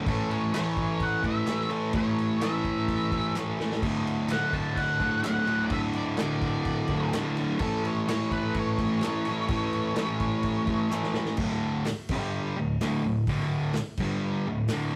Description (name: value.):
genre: garage rock duo or trio.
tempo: 127 BPM.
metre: 4/4.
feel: straight.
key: D major.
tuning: A4 = 440 Hz.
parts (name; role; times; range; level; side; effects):
fuzz guitar; riff; 0.0-14.9 s; D2 to A3; -29 LUFS; equal; distortion.
octave-fuzz lead guitar; melody; 0.1-10.9 s; A4 to A5; -34 LUFS; equal; distortion.
vintage drum kit; drums; 0.1-14.8 s; crash cymbal, hi-hat, kick drum, snare drum; -36 LUFS; equal; none.
group handclap; percussion; 0.5-14.8 s; none; -44 LUFS; equal; none.
room: moderate studio reverb, RT60 0.6 s.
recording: rough rehearsal-room recording, warm saturation.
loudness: -28 LUFS.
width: mono.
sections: 0.0-11.4 A section; 11.4-15.0 B section.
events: drum fill 3.4-3.8, 10.9-11.4.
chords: 0.1 A; 3.8 D; 7.6 A; 11.4 D5; 12.1 G5; 12.6 D5; 14.0 G5.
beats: | 0.08 0.55 1.01 1.48 | 1.95 2.42 2.89 3.36 | 3.83 4.30 4.77 5.24 | 5.71 6.19 6.66 7.13 | 7.61 8.08 8.55 9.03 | 9.50 9.97 10.45 10.92 | 11.39 11.87 12.34 12.81 | 13.29 13.76 14.23 14.70.